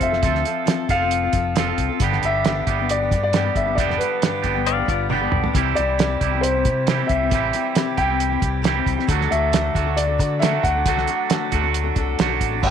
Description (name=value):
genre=folk rock and heartland rock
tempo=136 BPM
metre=4/4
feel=straight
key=unclear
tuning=A4 = 440 Hz
part: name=dark concert grand piano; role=melody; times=0.0-12.7 s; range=B4 to G5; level=-23 LUFS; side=left 2 dB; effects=none
part: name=picked steel-string acoustic guitar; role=accompaniment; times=0.0-12.7 s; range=G2 to B4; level=-27 LUFS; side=left 12 dB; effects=none
part: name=twangy electric guitar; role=riff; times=0.0-12.7 s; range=G2 to A4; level=-24 LUFS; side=right 15 dB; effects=spring reverb
part: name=fingered electric bass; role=bass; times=0.0-12.7 s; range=E1 to D3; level=-25 LUFS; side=left 1 dB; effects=none
part: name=cloth-damped thuddy drum kit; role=drums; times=0.0-12.7 s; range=crash cymbal, hi-hat, kick drum, snare drum, toms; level=-22 LUFS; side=right 3 dB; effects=none
part: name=pedal steel guitar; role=second line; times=4.7-5.5 s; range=F4 to F5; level=-24 LUFS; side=left 14 dB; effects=none
room=light reverb, small room ambience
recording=1960s-style stereo with parts hard left and right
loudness=-18 LUFS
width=side -8 dB against mid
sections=0.0-12.6 A section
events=drum fill 5.1-5.5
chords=0.0 F; 2.0 G; 5.5 C; 9.1 D